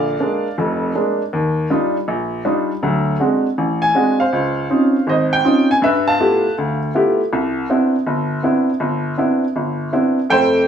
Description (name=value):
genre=solo jazz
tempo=161 BPM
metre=4/4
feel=swing 65% on 8ths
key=C major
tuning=A4 = 442 Hz
part: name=clear upright piano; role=solo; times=0.0-10.7 s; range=F1 to A5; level=-15 LUFS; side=equal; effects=none
room=wet club reverb, RT60 0.5 s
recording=studio reverb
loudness=-15 LUFS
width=side -8 dB against mid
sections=0.0-10.3 A section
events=none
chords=0.0 Bb7; 1.3 Ebmaj9; 2.8 D7#11; 4.3 Dbmaj9; 5.8 G13; 7.3 Cmaj9